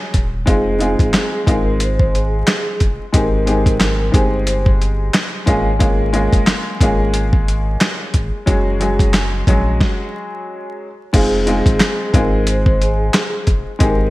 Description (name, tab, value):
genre	hip hop, boom-bap hip-hop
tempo	90 BPM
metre	4/4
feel	swing 56% on 16ths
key	unclear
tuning	A4 = 440 Hz
part	warm upright piano	accompaniment	0.0-14.1 s	Gb3 to Ab4	-20 LUFS	left 1 dB	cassette tape, high-pass filter, low-pass filter
part	warm sub bass	bass	0.1-14.1 s	Eb1 to Bb1	-19 LUFS	equal	none
part	dusty soul sampler-style drum kit	drums	0.1-14.0 s	crash cymbal, handclaps, hi-hat, kick drum, snare drum	-16 LUFS	equal	overdrive, gated reverb
part	vibraphone with soft mallets	melody	0.5-4.6, 11.2-14.1 s	Ab4 to C5	-22 LUFS	equal	high-pass filter, low-pass filter, digital delay
room	light reverb, digital ambience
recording	bright 1980s-style digital production, vinyl crackle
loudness	-13 LUFS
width	side -18 dB against mid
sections	0.0-11.1 A section; 11.1-14.1 B section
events	stop 9.8-11.1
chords	0.5 Fm7; 3.1 Abmaj7; 5.5 Db6; 8.5 Gbsus2; 11.1 Fm7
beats	| 0.47 1.14 1.81 2.47 | 3.14 3.81 4.47 5.14 | 5.81 6.47 7.14 7.81 | 8.47 9.14 9.81 10.47 | 11.14 11.81 12.47 13.14 | 13.81